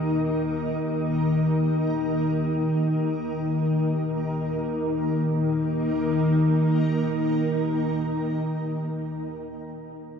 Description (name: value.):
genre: dark ambient drone.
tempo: free time.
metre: none.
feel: none.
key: unclear.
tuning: A4 = 444 Hz.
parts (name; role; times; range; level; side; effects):
granular cloud pad; sustained chords; 0.0-9.1 s; Bb3 to Bb4; -27 LUFS; left 1 dB; built-in reverb.
organ-like drone; drone; 0.0-9.1 s; Eb2 to Eb3; -25 LUFS; equal; ensemble chorus, built-in reverb.
room: wet cathedral reverb, RT60 5.5 s.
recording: in a vast, echoing space.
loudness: -22 LUFS.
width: side -7 dB against mid.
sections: 0.0-4.6 A section; 4.6-8.3 B section.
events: none.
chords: 0.0 Eb5.